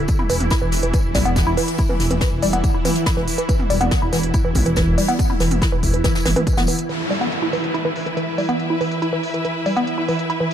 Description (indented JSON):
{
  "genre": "driving peak-time techno",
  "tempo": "141 BPM",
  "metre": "4/4",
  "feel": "straight",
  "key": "unclear",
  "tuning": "A4 = 440 Hz",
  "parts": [
    { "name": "woody wave-folded pluck", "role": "riff", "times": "0.0-10.4 s", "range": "E3 to E4", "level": "-22 LUFS", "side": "equal", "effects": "chorus, sidechain pumping, dub echo" },
    { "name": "detuned saw bass", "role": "bass", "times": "0.0-6.7 s", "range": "E1 to B1", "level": "-22 LUFS", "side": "equal", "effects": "sidechain pumping" },
    { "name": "swarming drone", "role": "drone", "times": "0.0-10.5 s", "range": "E3 to E4", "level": "-25 LUFS", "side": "right 1 dB", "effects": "built-in reverb, sidechain pumping" },
    { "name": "electronic kick drum", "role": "drums", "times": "0.1-6.6 s", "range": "none", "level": "-20 LUFS", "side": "equal", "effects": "none" },
    { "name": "soft brush drum kit", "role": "drums", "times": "0.1-6.8 s", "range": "hi-hat, snare drum, tambourine", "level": "-29 LUFS", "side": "left 2 dB", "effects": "high-pass filter on hats, high-pass filter on snare, high-pass filter on perc, high-pass filter on room" },
    { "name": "techno drum kit", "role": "drums", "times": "0.1-10.5 s", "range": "hi-hat, toms", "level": "-28 LUFS", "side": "right 1 dB", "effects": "sidechain pumping on hats, low-pass filter on hats, sidechain pumping on toms, low-pass filter on toms, low-pass filter on room" },
    { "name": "downlifter", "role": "sound effects", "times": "6.9-10.3 s", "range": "none", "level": "-28 LUFS", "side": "equal", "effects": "none" },
    { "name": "clear symphonic string section", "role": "texture", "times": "6.9-10.5 s", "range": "E4 to E5", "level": "-26 LUFS", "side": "equal", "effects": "sidechain pumping" }
  ],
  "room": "light reverb, studio reverb",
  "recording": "none",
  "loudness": "-17 LUFS",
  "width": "side -9 dB against mid",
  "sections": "0.0-6.9 A section; 6.9-10.5 B section",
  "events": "none",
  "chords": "0.0 E5"
}